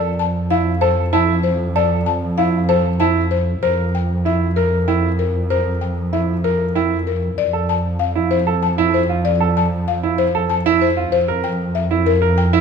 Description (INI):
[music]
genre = classical, minimalist pattern music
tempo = 192 BPM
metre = 6/4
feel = straight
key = F major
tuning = A4 = 440 Hz
[part]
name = buzzing marimba with medium mallets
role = melody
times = 0.0-12.6 s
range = Bb4 to A5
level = -20 LUFS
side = left 8 dB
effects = none
[part]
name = bright baby grand piano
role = arpeggios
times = 0.0-12.6 s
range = E4 to Bb4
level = -20 LUFS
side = right 8 dB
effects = none
[part]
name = dark studio double bass section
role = bass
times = 0.0-12.6 s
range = F2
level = -19 LUFS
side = right 1 dB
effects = none
[sound]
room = wet recital hall reverb, RT60 1.6 s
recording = none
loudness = -15 LUFS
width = side -6 dB against mid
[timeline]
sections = 0.0-7.4 A section; 7.4-12.6 A section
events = none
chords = 0.0 F; 3.6 C7/F (rootless); 7.4 F; 11.1 C7/F (rootless)